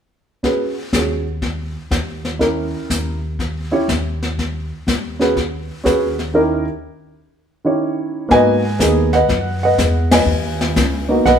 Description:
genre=jazz piano trio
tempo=122 BPM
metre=4/4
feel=swing 68% on 8ths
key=G# minor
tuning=A4 = 440 Hz
part: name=dark baby grand piano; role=melody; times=0.4-11.4 s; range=D#3 to G#5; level=-16 LUFS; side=right 1 dB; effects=none
part: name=jazz brush drum kit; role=drums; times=0.4-11.4 s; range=brushed snare drum, hi-hat, kick drum, ride cymbal, snare drum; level=-21 LUFS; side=left 2 dB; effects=none
part: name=upright bass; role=bass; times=0.9-11.4 s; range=B1 to G#2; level=-22 LUFS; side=equal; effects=none
room=moderate large studio reverb, RT60 1.2 s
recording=band playing live in one room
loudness=-16 LUFS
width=side -8 dB against mid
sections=0.4-8.3 A section; 8.3-11.4 B section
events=band accent 10.0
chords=0.4 D#m7; 8.3 G#m7

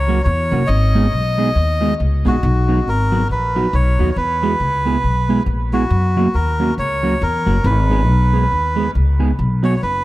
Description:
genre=ska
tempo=138 BPM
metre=4/4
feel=swing 59% on 8ths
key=B major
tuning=A4 = 439 Hz
part: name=melodica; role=melody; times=0.0-10.0 s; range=F#4 to D#5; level=-20 LUFS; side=equal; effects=dub echo, plate reverb
part: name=upright bass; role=bass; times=0.0-10.0 s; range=F#1 to F#2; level=-17 LUFS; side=left 1 dB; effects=none
part: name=mellow electric guitar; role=accompaniment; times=0.1-9.7 s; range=F#3 to G#4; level=-21 LUFS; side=right 2 dB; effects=phaser, dub echo, plate reverb
room=light reverb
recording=none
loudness=-14 LUFS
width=side -17 dB against mid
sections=0.0-9.4 A section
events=none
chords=0.0 F#; 0.7 G#m; 2.4 B; 4.2 E; 5.9 F#; 7.6 G#m; 9.4 B

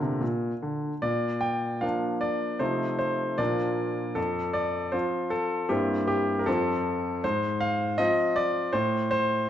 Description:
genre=classical-period piano sonatina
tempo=78 BPM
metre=2/4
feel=rubato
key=Bb major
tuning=A4 = 444 Hz
part: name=bright grand piano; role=solo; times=0.0-9.5 s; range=F2 to G5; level=-25 LUFS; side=equal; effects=none
room=moderate recital hall reverb, RT60 1.2 s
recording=dark, warm production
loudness=-25 LUFS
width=side -10 dB against mid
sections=0.0-1.0 A section; 1.0-9.5 B section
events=none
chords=0.0 Bb; 2.6 F7/C; 3.4 Bb; 4.2 F5; 5.7 C7/G; 6.5 F; 7.2 Fm/Ab; 8.7 Am

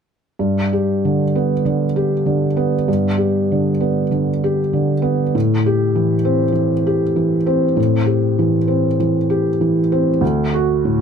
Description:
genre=neoclassical minimalist piano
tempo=98 BPM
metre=4/4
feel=rubato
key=G major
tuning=A4 = 440 Hz
part: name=felt-muted upright piano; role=solo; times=0.4-11.0 s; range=D2 to G4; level=-15 LUFS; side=equal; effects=none
room=little or no reverb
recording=close, detailed microphones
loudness=-15 LUFS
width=side -7 dB against mid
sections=0.4-11.0 A section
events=none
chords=0.4 G; 5.3 Am7; 10.2 D

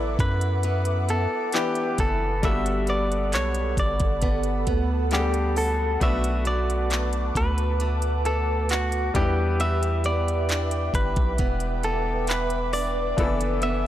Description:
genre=contemporary R&B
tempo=67 BPM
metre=4/4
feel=straight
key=unclear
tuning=A4 = 440 Hz
part: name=direct-recorded clean electric guitar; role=melody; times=0.0-13.9 s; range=F#4 to E5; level=-28 LUFS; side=equal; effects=spring reverb, analog delay
part: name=bright grand piano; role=accompaniment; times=0.0-13.9 s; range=E3 to F#5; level=-32 LUFS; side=left 4 dB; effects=none
part: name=ethereal airy pad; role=sustained chords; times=0.0-13.9 s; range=A4 to D6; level=-31 LUFS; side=equal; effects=ensemble chorus, built-in reverb, sidechain pumping
part: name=picked steel-string acoustic guitar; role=arpeggios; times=0.0-13.9 s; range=B2 to A4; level=-33 LUFS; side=right 4 dB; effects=none
part: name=long sustained 808-style bass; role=bass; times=0.0-13.9 s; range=E1 to F#2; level=-26 LUFS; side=equal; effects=none
part: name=trap drum kit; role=drums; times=0.2-13.8 s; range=handclaps, hi-hat, kick drum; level=-27 LUFS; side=equal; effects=none
room=digital ambience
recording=dry, gritty hardware recording, transformer saturation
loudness=-22 LUFS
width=side -12 dB against mid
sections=0.0-13.9 A section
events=none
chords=0.0 D69; 2.4 Gmaj9; 6.0 Bm7; 9.2 Em7; 13.2 D69/F#

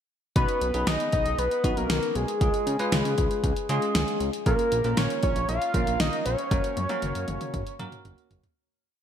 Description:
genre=synth-pop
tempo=117 BPM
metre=4/4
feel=straight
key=unclear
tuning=A4 = 440 Hz
part: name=fat analog lead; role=melody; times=0.4-8.3 s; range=Ab4 to F5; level=-28 LUFS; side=left 1 dB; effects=chorus, ping-pong delay
part: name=bell-like tine electric piano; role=accompaniment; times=0.4-8.4 s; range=Ab3 to Cb5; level=-31 LUFS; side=right 1 dB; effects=lush chorus
part: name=fat analog bass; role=bass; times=0.4-8.4 s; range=Gb1 to Db3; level=-30 LUFS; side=equal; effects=none
part: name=deep house drum kit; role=drums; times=0.4-8.6 s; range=hi-hat, kick drum, snare drum, toms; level=-28 LUFS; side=equal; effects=gated reverb
room=moderate lush hall reverb, RT60 1.8 s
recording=bright 1980s-style digital production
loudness=-23 LUFS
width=side -9 dB against mid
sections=0.4-8.6 verse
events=fade-out 6.5-8.6; drum fill 6.5-8.6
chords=0.4 Cbadd9; 2.4 Db; 4.5 Bbm; 6.5 Gb

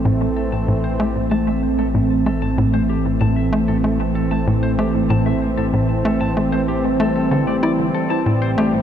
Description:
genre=ambient, sequencer-driven space music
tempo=95 BPM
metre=4/4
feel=straight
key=A minor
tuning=A4 = 441 Hz
part: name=sweeping resonant pad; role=sustained chords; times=0.0-8.8 s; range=E3 to C4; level=-19 LUFS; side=right 1 dB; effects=chorus
part: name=clean electric guitar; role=arpeggios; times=0.0-8.7 s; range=A3 to A5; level=-30 LUFS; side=left 4 dB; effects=auto-pan, analog delay
part: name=warm sub bass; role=bass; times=0.0-8.8 s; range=A1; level=-26 LUFS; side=left 1 dB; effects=none
part: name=tight sequencer bass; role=riff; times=0.1-8.8 s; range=A2 to E4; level=-20 LUFS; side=equal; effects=analog delay
room=wet huge ambient reverb, RT60 8.1 s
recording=cassette tape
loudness=-16 LUFS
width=side -9 dB against mid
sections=0.0-8.8 A section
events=fade-in on clean electric guitar 0.0-8.8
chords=0.0 Am

